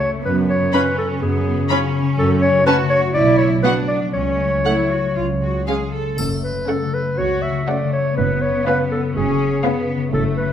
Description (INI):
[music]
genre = cinematic, playful, whimsical film cue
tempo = 122 BPM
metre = 4/4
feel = straight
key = unclear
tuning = A4 = 440 Hz
[part]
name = warm clarinet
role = second line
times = 0.0-10.5 s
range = G#4 to E5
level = -20 LUFS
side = left 1 dB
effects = none
[part]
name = concert harp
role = arpeggios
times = 0.0-10.5 s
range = F#2 to C#4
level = -23 LUFS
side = left 6 dB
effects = none
[part]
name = rich studio cello section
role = bass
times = 0.0-10.5 s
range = A3 to A4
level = -24 LUFS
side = right 2 dB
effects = none
[part]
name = rich studio double bass section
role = bass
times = 0.2-10.5 s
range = F#1 to F#2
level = -23 LUFS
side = right 5 dB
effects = none
[part]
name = rich studio violin section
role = melody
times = 0.7-10.0 s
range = E#5 to B5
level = -26 LUFS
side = left 3 dB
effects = none
[part]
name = warm studio violin section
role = second line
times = 0.7-10.0 s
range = C#4 to F#4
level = -31 LUFS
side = left 2 dB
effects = none
[part]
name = rich studio viola section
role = accompaniment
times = 0.7-10.0 s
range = G#3 to C#4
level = -25 LUFS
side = right 2 dB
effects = none
[part]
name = triangle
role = percussion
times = 6.2-7.1 s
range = none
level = -34 LUFS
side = right 1 dB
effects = none
[sound]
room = wet recital hall reverb, RT60 1.4 s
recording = none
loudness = -16 LUFS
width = side -9 dB against mid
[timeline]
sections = 0.0-10.5 A section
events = none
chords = 0.2 C#7(no3)/F#; 2.2 F#m; 3.1 Bm; 4.1 F#m/C#; 5.2 C#5; 6.2 F#m; 8.2 C#7/F#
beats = | 0.24 0.73 1.21 1.70 | 2.18 2.66 3.15 3.64 | 4.15 4.66 5.17 5.68 | 6.18 6.68 7.18 7.68 | 8.17 8.66 9.16 9.64 | 10.12